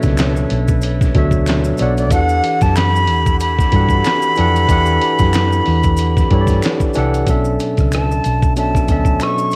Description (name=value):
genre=R&B, neo-soul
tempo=93 BPM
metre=4/4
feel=swing 58% on 16ths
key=B minor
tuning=A4 = 436 Hz
part: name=barky tine electric piano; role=accompaniment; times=0.0-9.6 s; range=B2 to F#5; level=-21 LUFS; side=equal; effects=overdrive, cassette tape
part: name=bright flute section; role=sustained chords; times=0.0-7.2 s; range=E4 to B5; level=-34 LUFS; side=equal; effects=none
part: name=hollow-body short-scale fingered electric bass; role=bass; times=0.0-9.2 s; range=B1 to G2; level=-20 LUFS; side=equal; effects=none
part: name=dusty soul sampler-style drum kit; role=drums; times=0.0-9.6 s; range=handclaps, hi-hat, kick drum, rim click, snare drum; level=-20 LUFS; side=equal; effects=cassette tape
part: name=maracas and finger snaps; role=percussion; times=0.0-9.6 s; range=none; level=-36 LUFS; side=equal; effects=none
part: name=breathy bright concert flute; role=melody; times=1.8-9.6 s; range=D5 to C#6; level=-20 LUFS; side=equal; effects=none
room=studio reverb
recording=home recording on cassette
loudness=-15 LUFS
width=mono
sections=0.0-7.3 A section; 7.3-9.6 B section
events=none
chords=0.0 Bm11; 2.1 Em11; 7.3 Bm11